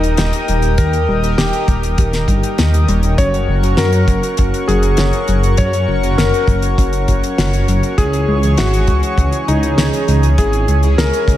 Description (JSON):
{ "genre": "synthwave", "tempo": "100 BPM", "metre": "4/4", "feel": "straight", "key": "unclear", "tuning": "A4 = 441 Hz", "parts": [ { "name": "warm electric grand piano", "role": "melody", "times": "0.0-11.3 s", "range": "D#4 to C#5", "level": "-21 LUFS", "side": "left 2 dB", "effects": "diffuse ambient delay, shimmer reverb" }, { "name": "warm analog pad", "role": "sustained chords", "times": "0.0-11.4 s", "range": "G#4 to D#6", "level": "-22 LUFS", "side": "left 2 dB", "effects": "chorus, sidechain pumping, shimmer reverb" }, { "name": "soft round pluck", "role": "arpeggios", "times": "0.0-11.4 s", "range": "F#3 to G#4", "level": "-25 LUFS", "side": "left 1 dB", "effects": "chorus, cassette tape, diffuse ambient delay, shimmer reverb" }, { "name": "chorused polysynth", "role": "stabs", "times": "0.0-11.4 s", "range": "E3 to C#5", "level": "-24 LUFS", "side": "right 2 dB", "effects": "diffuse ambient delay, shimmer reverb" }, { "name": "dark detuned saw bass", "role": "bass", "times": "0.0-11.4 s", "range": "D#1 to F#2", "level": "-15 LUFS", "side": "equal", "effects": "tube saturation" }, { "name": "damped 70s drum kit", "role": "drums", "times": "0.0-11.4 s", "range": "hi-hat, snare drum", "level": "-21 LUFS", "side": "left 1 dB", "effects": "none" }, { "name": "kick drum", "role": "drums", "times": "0.8-11.4 s", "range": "none", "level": "-14 LUFS", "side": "equal", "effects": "none" } ], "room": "light reverb, small room ambience", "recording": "none", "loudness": "-12 LUFS", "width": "side -13 dB against mid", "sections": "0.0-11.4 A section", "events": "none", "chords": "0.0 D#; 3.2 F#; 8.0 C#m" }